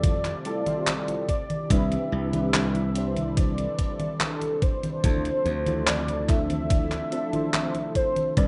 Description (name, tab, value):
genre	vaporwave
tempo	72 BPM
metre	4/4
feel	straight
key	unclear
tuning	A4 = 443 Hz
part	warm velvety synth lead	melody	0.0-8.5 s	A4 to E5	-32 LUFS	equal	chorus, tape echo
part	warbly lo-fi synth keys	accompaniment	0.0-8.5 s	F3 to C5	-34 LUFS	equal	ensemble chorus
part	soft string machine	sustained chords	0.0-8.5 s	C3 to E5	-42 LUFS	equal	none
part	slap bass	bass	0.0-8.5 s	C2 to F2	-30 LUFS	equal	none
part	detuned 8-bit digital drum machine	drums	0.0-8.5 s	congas, handclaps, hi-hat	-32 LUFS	equal	none
part	electronic kick drum	drums	0.0-8.5 s	none	-26 LUFS	equal	none
room	light reverb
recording	rough home demo mix, nothing above 10.9 kHz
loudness	-26 LUFS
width	mono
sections	0.0-8.5 A section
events	none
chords	0.0 Fmaj9; 1.3 Cmaj9; 5.0 Dm9